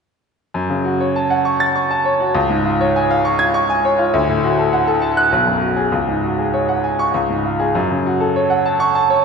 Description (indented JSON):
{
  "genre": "classical, virtuoso piano study",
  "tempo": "100 BPM",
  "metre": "3/4",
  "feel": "rubato",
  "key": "F# minor",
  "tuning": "A4 = 438 Hz",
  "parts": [
    { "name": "bright grand piano", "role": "solo", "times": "0.5-9.2 s", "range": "B1 to A6", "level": "-14 LUFS", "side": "equal", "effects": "none" }
  ],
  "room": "wet scoring stage reverb, RT60 1.9 s",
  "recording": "recorded in a church or concert hall, nothing above 10.7 kHz",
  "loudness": "-14 LUFS",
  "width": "side -5 dB against mid",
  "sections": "0.6-9.2 A section",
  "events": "none",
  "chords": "0.6 F#m; 2.4 C#; 4.1 D; 5.3 B5; 5.9 C#sus4; 7.1 C#; 7.7 F#m"
}